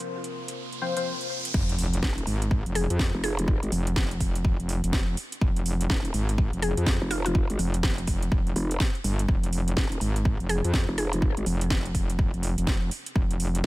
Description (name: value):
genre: bass house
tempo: 124 BPM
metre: 4/4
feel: swing 62% on 16ths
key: F minor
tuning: A4 = 440 Hz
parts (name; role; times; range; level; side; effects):
- dark analog pad; sustained chords; 0.0-13.7 s; C4 to Ab5; -42 LUFS; left 2 dB; chorus, sidechain pumping
- percussive organ stab; stabs; 0.0-1.1 s; F3 to C5; -32 LUFS; left 5 dB; analog chorus, sidechain pumping, ping-pong delay
- house drum kit; drums; 0.0-13.7 s; crash cymbal, hi-hat, snare drum; -33 LUFS; right 1 dB; none
- riser and sub drop; sound effects; 0.0-3.5 s; none; -35 LUFS; right 1 dB; none
- warbly tape-like pad; texture; 0.0-1.6 s; C4 to Eb6; -56 LUFS; right 1 dB; none
- metallic wobble bass; bass; 1.5-13.6 s; F1 to F2; -26 LUFS; equal; chorus, sidechain pumping
- electronic kick drum; drums; 1.5-13.7 s; none; -25 LUFS; equal; none
- growl bass; bass; 2.0-13.7 s; Eb1 to Ab1; -28 LUFS; equal; chorus, sidechain pumping
- mallet-like synth pluck; melody; 2.8-7.3, 10.5-11.5 s; F4 to Ab4; -33 LUFS; left 1 dB; chorus, ping-pong delay
room: little or no reverb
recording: none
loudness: -24 LUFS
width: side -18 dB against mid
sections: 0.0-1.5 A section; 1.5-13.7 B section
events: riser 0.0-1.5; filter sweep on synth stab 0.0-1.5; filter sweep 0.0-1.5; drop 1.5-13.7; impact 1.5-3.5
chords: 0.0 F5